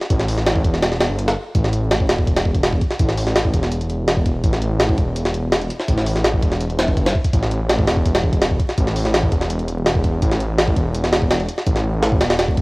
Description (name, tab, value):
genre	drum and bass, jungle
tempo	166 BPM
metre	4/4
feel	straight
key	unclear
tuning	A4 = 436 Hz
part	jungle sampler-style drum kit	drums	0.0-12.6 s	hi-hat, kick drum, snare drum	-18 LUFS	equal	studio reverb, cassette tape
part	detuned saw bass	bass	0.1-12.6 s	E1 to A1	-20 LUFS	equal	none
room	digital ambience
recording	home recording on cassette, vinyl crackle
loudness	-16 LUFS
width	side -24 dB against mid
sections	0.0-12.6 A section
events	none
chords	none